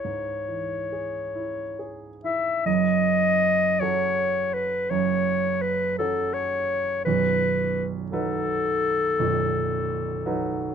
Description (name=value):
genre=classical, romantic duo for clarinet and grand piano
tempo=44-57 BPM (dotted quarters)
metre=12/8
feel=rubato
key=unclear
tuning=A4 = 440 Hz
part: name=warm clarinet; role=melody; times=0.0-10.7 s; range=A4 to E5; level=-24 LUFS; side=left 3 dB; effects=none
part: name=warm baby grand piano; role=accompaniment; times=0.0-10.7 s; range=B0 to B4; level=-27 LUFS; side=right 7 dB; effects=none
room=light reverb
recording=close, detailed microphones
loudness=-22 LUFS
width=side -8 dB against mid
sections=0.0-2.7 A section; 2.7-10.7 B section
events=none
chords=0.0 C#m; 2.7 F#m; 7.1 B7